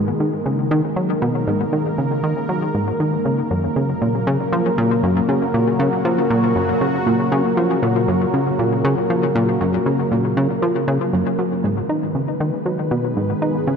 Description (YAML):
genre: ambient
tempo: 118 BPM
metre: 4/4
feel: straight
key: unclear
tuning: A4 = 439 Hz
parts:
  - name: sweeping resonant pad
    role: sustained chords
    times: 0.0-13.8 s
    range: C#3 to B4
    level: -20 LUFS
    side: equal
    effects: chorus
  - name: plucky analog bass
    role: riff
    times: 0.0-13.8 s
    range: F#2 to D#4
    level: -19 LUFS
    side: equal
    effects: ping-pong delay
room: wet huge ambient reverb, RT60 7.7 s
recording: none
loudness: -17 LUFS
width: side -6 dB against mid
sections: 0.0-13.8 A section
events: none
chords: 0.0 G#m; 3.5 F#; 11.6 G#m